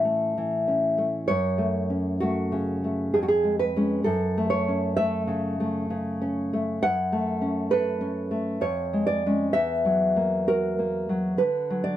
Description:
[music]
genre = romantic piece for solo classical guitar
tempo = 65 BPM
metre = 3/4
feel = rubato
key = F# minor from 6.8 s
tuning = A4 = 440 Hz
[part]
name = nylon-string guitar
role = solo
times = 0.0-12.0 s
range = E2 to F#5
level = -23 LUFS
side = equal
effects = none
[sound]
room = moderate small room reverb, RT60 0.6 s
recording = none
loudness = -23 LUFS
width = side -12 dB against mid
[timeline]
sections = 0.0-12.0 A section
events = none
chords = 0.0 A; 1.3 F#m; 3.1 C#/E#; 4.0 F#m; 8.6 C#/E#; 9.6 F#7/E; 11.4 Bm/D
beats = 0.37 | 1.29 2.21 3.15 | 4.05 4.96 5.90 | 6.82 7.72 8.64 | 9.55 10.49 11.41

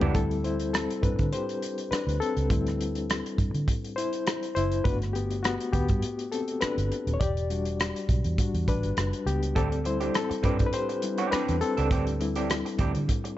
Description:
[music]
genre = lush 1970s-style soul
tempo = 102 BPM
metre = 4/4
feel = swing 54% on 16ths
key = unclear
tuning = A4 = 438 Hz
[part]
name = barky reed electric piano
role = accompaniment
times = 0.0-13.4 s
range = G3 to D5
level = -29 LUFS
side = left 3 dB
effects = overdrive, fast tremolo
[part]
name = electric guitar through a small old amp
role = riff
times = 0.0-0.2, 9.6-13.3 s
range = E3 to A4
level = -33 LUFS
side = right 7 dB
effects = none
[part]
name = vintage muted fingered electric bass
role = bass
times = 0.0-13.1 s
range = Eb1 to D3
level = -29 LUFS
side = right 1 dB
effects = none
[part]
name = warm soul drum kit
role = drums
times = 0.0-13.4 s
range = hi-hat, kick drum, rim click, toms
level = -29 LUFS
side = right 1 dB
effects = none
[sound]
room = small room ambience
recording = nothing above 7.9 kHz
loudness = -25 LUFS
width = side -14 dB against mid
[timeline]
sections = 0.1-13.4 A section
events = reed electric piano solo 0.1-13.4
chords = 0.1 D7sus4; 4.9 Gmaj7; 7.2 Em7; 9.6 D7sus4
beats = | 0.15 0.74 1.33 1.91 | 2.50 3.09 3.68 4.27 | 4.86 5.44 6.03 6.62 | 7.21 7.80 8.38 8.97 | 9.56 10.15 10.74 11.32 | 11.91 12.50 13.09

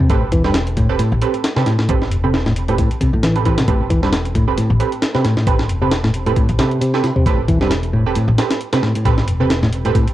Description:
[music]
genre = breakbeat, breaks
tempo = 134 BPM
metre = 4/4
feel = swing 56% on 16ths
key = A minor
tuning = A4 = 440 Hz
[part]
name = picked electric bass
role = riff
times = 0.0-10.0 s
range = G2 to E3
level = -18 LUFS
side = left 1 dB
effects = cassette tape, tape echo
[part]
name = breakbeat sampler-style drum kit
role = drums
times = 0.0-10.1 s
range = hi-hat, kick drum, snare drum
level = -19 LUFS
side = left 1 dB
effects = studio reverb
[part]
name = orchestra-hit-like synth stab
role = stabs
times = 0.1-9.9 s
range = C4 to B4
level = -22 LUFS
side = right 8 dB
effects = built-in reverb, cassette tape, tape echo
[part]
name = upright bass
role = bass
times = 0.1-9.9 s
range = E1 to A1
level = -20 LUFS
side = left 1 dB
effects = none
[sound]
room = light reverb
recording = home recording on cassette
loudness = -14 LUFS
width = side -14 dB against mid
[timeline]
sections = 0.0-10.1 A section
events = none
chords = 0.0 Am9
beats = | 0.10 0.55 0.99 1.44 | 1.89 2.34 2.79 3.23 | 3.68 4.13 4.58 5.03 | 5.47 5.92 6.37 6.82 | 7.26 7.71 8.16 8.61 | 9.05 9.50 9.95

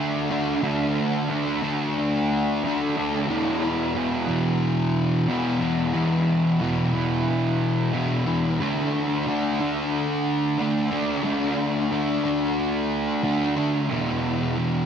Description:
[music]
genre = rock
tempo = 90 BPM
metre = 4/4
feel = straight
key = unclear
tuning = A4 = 440 Hz
[part]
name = fuzz guitar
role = solo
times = 0.0-14.9 s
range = E2 to D4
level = -21 LUFS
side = equal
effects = distortion, wide subtle chorus, diffuse ambient delay
[sound]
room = wet lush hall reverb, RT60 1.8 s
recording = dreamy mix soaked in reverb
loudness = -21 LUFS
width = side -8 dB against mid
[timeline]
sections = 0.0-8.6 A section; 8.6-14.9 B section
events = none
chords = 0.0 D5; 3.3 E5; 8.6 D5; 13.9 E5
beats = | 0.65 1.31 1.97 2.64 | 3.30 3.96 4.63 5.29 | 5.96 6.62 7.29 7.95 | 8.61 9.28 9.94 10.60 | 11.26 11.93 12.59 13.25 | 13.91 14.57

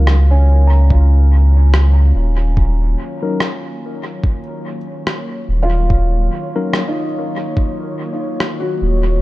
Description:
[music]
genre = ambient dub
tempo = 72 BPM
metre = 4/4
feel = swing 58% on 16ths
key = Eb minor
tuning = A4 = 440 Hz
[part]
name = airy breathy pad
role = sustained chords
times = 0.3-9.2 s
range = Eb3 to Db5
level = -28 LUFS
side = left 1 dB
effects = chorus
[part]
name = felt-muted upright piano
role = arpeggios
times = 0.0-9.2 s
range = Db4 to Bb5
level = -24 LUFS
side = equal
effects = tape echo
[part]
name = tine electric piano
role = stabs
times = 0.0-6.8 s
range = Gb3 to Bb4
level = -25 LUFS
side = left 3 dB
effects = medium tremolo, low-pass filter, dub echo
[part]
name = warm sub bass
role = bass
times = 0.0-9.2 s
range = Eb1 to Db2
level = -11 LUFS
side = equal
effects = none
[part]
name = electronic rim click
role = drums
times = 0.1-8.6 s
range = none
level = -24 LUFS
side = equal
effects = dub echo
[part]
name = electronic kick drum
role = drums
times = 0.9-7.8 s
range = none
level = -15 LUFS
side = equal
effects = none
[sound]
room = little or no reverb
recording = echo-heavy mix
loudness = -13 LUFS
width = side -18 dB against mid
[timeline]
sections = 0.0-9.2 A section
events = fade-in on analog synth pad 0.0-9.2; filter sweep on tine electric piano 0.0-9.2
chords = 0.0 Ebm7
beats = 0.07 | 0.90 1.74 2.57 3.40 | 4.24 5.07 5.90 6.74 | 7.57 8.40

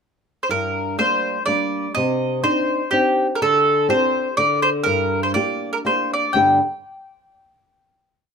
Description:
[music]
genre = italian folk, Italian serenade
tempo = 123 BPM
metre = 3/4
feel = swing 54% on 8ths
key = G minor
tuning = A4 = 438 Hz
[part]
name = mandolin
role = melody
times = 0.4-6.6 s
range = G4 to G5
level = -19 LUFS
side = equal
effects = plate reverb
[part]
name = flamenco guitar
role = accompaniment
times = 0.5-6.6 s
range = G2 to D5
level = -22 LUFS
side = left 1 dB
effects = none
[sound]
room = moderate small room ambience, RT60 0.5 s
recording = none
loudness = -17 LUFS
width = side -6 dB against mid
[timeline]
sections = 0.0-0.5 pickup bar; 0.5-6.3 A section; 6.3-7.8 final chord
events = none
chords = 0.5 Gm; 2.0 Cmadd9; 3.4 D7sus4; 4.4 N.C.; 4.9 Gm; 6.3 G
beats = 0.01 | 0.50 0.98 1.47 | 1.96 2.45 2.93 | 3.41 3.89 4.38 | 4.87 5.35 5.85 | 6.34

